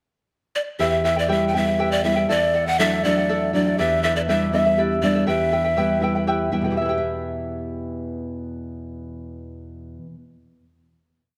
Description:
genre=andean folk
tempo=81 BPM (dotted quarters)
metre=6/8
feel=straight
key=E minor pentatonic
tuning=A4 = 441 Hz
part: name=breathy mellow large pan pipes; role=melody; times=0.6-6.2 s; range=D5 to G5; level=-24 LUFS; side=equal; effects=slapback echo
part: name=charango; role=accompaniment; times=0.8-10.4 s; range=E4 to G5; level=-26 LUFS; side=equal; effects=none
part: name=nylon-string guitar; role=accompaniment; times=0.8-10.4 s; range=E2 to E5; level=-27 LUFS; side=equal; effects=none
room=moderate scoring stage reverb, RT60 1.8 s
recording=dark, warm production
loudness=-21 LUFS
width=mono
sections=0.0-0.8 pickup bar; 0.8-6.7 A section; 6.7-9.7 final chord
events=none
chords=0.0 N.C.; 0.8 Em; 2.3 D/E; 3.8 G/E; 5.3 Em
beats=0.04 | 0.79 1.54 | 2.29 3.03 | 3.78 4.52 | 5.26 6.01 | 6.75 7.49 | 8.23 8.97

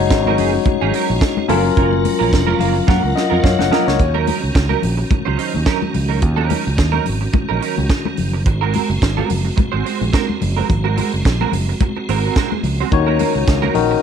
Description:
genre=disco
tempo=108 BPM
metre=4/4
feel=swing 56% on 16ths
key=Eb dorian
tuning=A4 = 440 Hz
part: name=barky tine electric piano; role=accompaniment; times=0.0-4.1, 12.9-14.0 s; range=Eb3 to Gb5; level=-18 LUFS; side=left 12 dB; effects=none
part: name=clean electric guitar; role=accompaniment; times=0.0-13.9 s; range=Gb3 to C5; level=-22 LUFS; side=right 14 dB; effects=ensemble chorus
part: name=tonewheel organ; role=sustained chords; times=0.0-14.0 s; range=Eb3 to Bb4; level=-25 LUFS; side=right 1 dB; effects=overdrive, chorus vibrato, slow rotary speaker
part: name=fingered electric bass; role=bass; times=0.0-13.9 s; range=F1 to Gb2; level=-19 LUFS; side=right 1 dB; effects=none
part: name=tight funk drum kit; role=drums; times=0.1-13.9 s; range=hi-hat, kick drum, snare drum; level=-20 LUFS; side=right 2 dB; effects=none
part: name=congas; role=percussion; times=0.1-13.9 s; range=none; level=-26 LUFS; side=left 9 dB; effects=none
room=light reverb, studio reverb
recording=1960s-style stereo with parts hard left and right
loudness=-14 LUFS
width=side -8 dB against mid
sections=0.0-4.0 A section; 4.0-14.0 B section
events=tine electric piano fill 2.3-4.0; drum fill 2.9-4.0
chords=0.0 Ab7sus4; 1.5 Gbmaj7; 4.0 Ebm7; 8.5 Ab9; 12.9 Ebm7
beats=0.11 0.66 1.22 | 1.77 2.33 2.88 3.44 | 4.00 4.55 5.11 5.67 | 6.23 6.78 7.34 7.90 | 8.46 9.02 9.57 10.13 | 10.69 11.25 11.80 12.36 | 12.92 13.47

